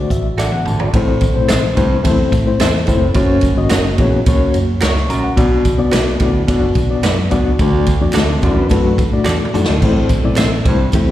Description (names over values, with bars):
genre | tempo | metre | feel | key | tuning
uptempo 1960s-style soul | 108 BPM | 4/4 | straight | A dorian | A4 = 439 Hz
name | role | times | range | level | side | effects
mellow reed electric piano | accompaniment | 0.0-11.1 s | A3 to C#6 | -17 LUFS | left 4 dB | fast tremolo
vintage muted fingered electric bass | bass | 0.0-11.1 s | F1 to D3 | -18 LUFS | right 1 dB | none
swinging big-band drum kit | drums | 0.1-11.1 s | crash cymbal, hi-hat, kick drum, ride cymbal, snare drum, toms | -17 LUFS | equal | none
tambourine and handclaps | percussion | 0.1-11.1 s | none | -30 LUFS | right 2 dB | slapback echo
warm baritone saxophone | riff | 0.4-11.1 s | D2 to B2 | -22 LUFS | right 2 dB | slapback echo
direct-recorded clean electric guitar | stabs | 0.4-10.5 s | F#4 to E5 | -24 LUFS | right 5 dB | slapback echo
hollow-body jazz guitar | riff | 8.1-9.6 s | A3 to C5 | -26 LUFS | left 4 dB | slapback echo
room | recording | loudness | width
light reverb, small room ambience | live gig heard through the venue's PA, recital hall reverb | -12 LUFS | side -13 dB against mid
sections
0.9-11.1 A section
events
reed electric piano fill 0.0-0.9; drum fill 0.4-0.9, 9.3-9.8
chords
0.0 D; 0.9 Am; 3.2 F#; 5.4 Bm; 7.6 D; 9.8 Am